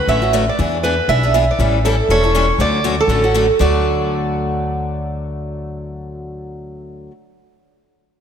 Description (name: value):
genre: acoustic string swing (jazz manouche)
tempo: 239 BPM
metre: 4/4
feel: swing 56% on 8ths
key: D major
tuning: A4 = 439 Hz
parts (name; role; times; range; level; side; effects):
- picked steel-string acoustic guitar; melody; 0.0-7.1 s; A4 to E5; -18 LUFS; right 4 dB; tape echo
- picked steel-string acoustic guitar; accompaniment; 0.1-7.1 s; D3 to A4; -21 LUFS; left 4 dB; none
- upright bass; bass; 0.1-7.1 s; E1 to E2; -20 LUFS; left 1 dB; none
room: moderate lush hall reverb, RT60 2.7 s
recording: dreamy mix soaked in reverb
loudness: -14 LUFS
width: side -8 dB against mid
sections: 0.0-3.6 A section; 3.6-5.6 B section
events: none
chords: 0.0 Dmaj7; 0.6 E7; 1.6 A7; 2.6 Dmaj7; 3.6 D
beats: 0.08 0.33 | 0.58 0.83 1.08 1.34 | 1.59 1.84 2.09 2.34 | 2.59 2.85 3.10 3.35 | 3.60 3.85 4.10 4.35 | 4.60 4.86 5.11 5.36